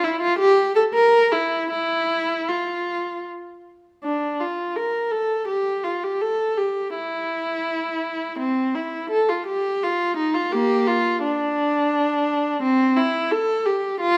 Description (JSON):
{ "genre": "classical, baroque-style suite movement for unaccompanied viola", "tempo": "75-87 BPM", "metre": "3/4", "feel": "rubato", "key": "F major", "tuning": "A4 = 440 Hz", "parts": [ { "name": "warm viola", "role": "solo", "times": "0.0-14.2 s", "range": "Bb3 to Bb4", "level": "-22 LUFS", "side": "equal", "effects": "none" } ], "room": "wet stone room reverb, RT60 1.3 s", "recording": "none", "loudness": "-22 LUFS", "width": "mono", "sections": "0.0-4.0 A section; 4.0-14.2 A section", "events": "none", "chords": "none" }